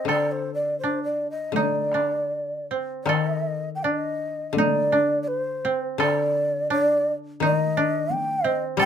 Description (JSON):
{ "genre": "japanese traditional, Japanese chamber music", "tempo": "77-88 BPM", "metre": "4/4", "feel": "rubato", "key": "D in sen", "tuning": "A4 = 440 Hz", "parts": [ { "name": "breathy mellow shakuhachi", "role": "melody", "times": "0.0-8.9 s", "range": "C5 to G5", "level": "-24 LUFS", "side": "right 1 dB", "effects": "none" }, { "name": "koto", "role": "second line", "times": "0.0-8.9 s", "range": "C4 to A4", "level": "-26 LUFS", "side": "right 3 dB", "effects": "none" }, { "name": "koto", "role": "accompaniment", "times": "0.0-8.9 s", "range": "D3 to G3", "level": "-29 LUFS", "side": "left 8 dB", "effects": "none" }, { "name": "taiko ensemble", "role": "percussion", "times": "0.1-8.9 s", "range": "none", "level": "-30 LUFS", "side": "equal", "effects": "none" } ], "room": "moderate small room ambience, RT60 0.5 s", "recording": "minimal, uncompressed stereo recording", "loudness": "-22 LUFS", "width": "side -8 dB against mid", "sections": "0.0-3.1 A section; 3.1-8.9 B section", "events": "none", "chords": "none" }